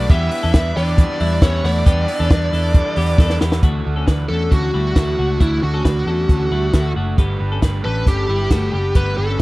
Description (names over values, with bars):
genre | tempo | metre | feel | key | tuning
jangly indie pop | 135 BPM | 4/4 | straight | D major | A4 = 440 Hz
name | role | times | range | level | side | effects
high-gain lead guitar | melody | 0.0-9.4 s | E4 to E5 | -22 LUFS | equal | distortion, slapback echo
brilliant trumpet | second line | 0.0-3.4 s | C#4 to E4 | -30 LUFS | left 4 dB | none
crunchy overdriven guitar | accompaniment | 0.0-9.4 s | D3 to B4 | -27 LUFS | right 5 dB | none
twelve-string electric guitar | arpeggios | 0.0-9.4 s | G3 to B4 | -26 LUFS | left 4 dB | slapback echo
vintage muted picked electric bass | bass | 0.0-9.4 s | F#1 to E2 | -19 LUFS | equal | none
compact cocktail drum kit | drums | 0.1-9.4 s | hi-hat, kick drum, snare drum | -13 LUFS | equal | none
room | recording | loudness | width
little or no reverb | dry, close 1970s-style studio recording | -15 LUFS | side -20 dB against mid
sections
0.0-3.6 A section; 3.6-9.4 B section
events
drum fill 3.2-3.6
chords
0.1 Em7; 3.6 Dadd9